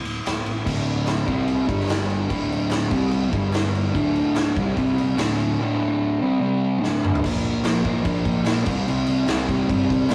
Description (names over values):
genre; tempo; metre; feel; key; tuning
garage rock duo or trio; 146 BPM; 4/4; straight; unclear; A4 = 440 Hz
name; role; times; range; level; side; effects
hollow-body short-scale picked electric bass; bass; 0.0-10.1 s; D1 to G2; -32 LUFS; equal; tube saturation
raw garage drum kit; drums; 0.1-10.1 s; crash cymbal, kick drum, ride cymbal, snare drum, toms; -28 LUFS; equal; none
group handclap; percussion; 0.3-10.1 s; none; -41 LUFS; equal; none
fuzz guitar; riff; 0.6-10.1 s; D2 to C4; -23 LUFS; equal; distortion
room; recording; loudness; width
wet small room reverb, RT60 0.5 s; rough rehearsal-room recording, warm saturation, cassette tape; -22 LUFS; mono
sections
0.7-7.2 A section; 7.2-10.1 B section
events
drum fill 6.8-7.2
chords
0.0 D5; 1.3 C5; 1.7 G5; 2.3 D5; 2.9 C5; 3.3 G5; 3.9 D5; 4.8 C5; 5.2 D5; 6.4 C5; 6.8 D5; 7.2 Bb5; 8.7 C5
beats
0.25 | 0.66 1.07 1.48 1.90 | 2.31 2.71 3.13 3.54 | 3.95 4.36 4.77 5.18 | 5.59 6.00 6.41 6.82 | 7.23 7.64 8.05 8.46 | 8.87 9.28 9.69 10.10